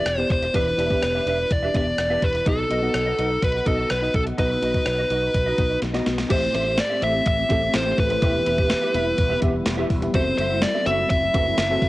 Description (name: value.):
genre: 1980s-style pop.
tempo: 125 BPM.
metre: 4/4.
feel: straight.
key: E minor.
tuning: A4 = 441 Hz.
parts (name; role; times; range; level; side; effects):
fuzz lead guitar; melody; 0.0-11.9 s; A4 to E5; -22 LUFS; equal; distortion, cassette tape.
FM electric piano with soft pad layer; accompaniment; 0.0-11.9 s; A2 to F#5; -28 LUFS; left 1 dB; chorus, cassette tape.
clean electric guitar; riff; 0.0-11.7 s; C4 to E5; -31 LUFS; right 3 dB; ensemble chorus, cassette tape.
modern bright fingered electric bass; bass; 0.1-11.9 s; E1 to B1; -29 LUFS; equal; none.
clean 12-bit digital drum machine; drums; 0.1-11.9 s; crash cymbal, hi-hat, kick drum, rim click, snare drum; -25 LUFS; equal; cassette tape.
granular cloud pad; sustained chords; 7.0-11.9 s; F#3 to G4; -31 LUFS; equal; built-in reverb, cassette tape.
room: light reverb, digital ambience.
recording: home recording on cassette.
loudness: -19 LUFS.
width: side -18 dB against mid.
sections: 0.0-6.3 A section; 6.3-11.9 B section.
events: drum fill 5.8-6.3.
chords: 0.0 Em7; 2.5 B; 6.3 Am7; 8.2 Em; 10.1 F#m7b5.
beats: 0.06 | 0.54 1.02 1.50 1.98 | 2.46 2.94 3.42 3.90 | 4.38 4.86 5.34 5.82 | 6.30 6.78 7.26 7.74 | 8.22 8.70 9.18 9.66 | 10.14 10.62 11.10 11.58.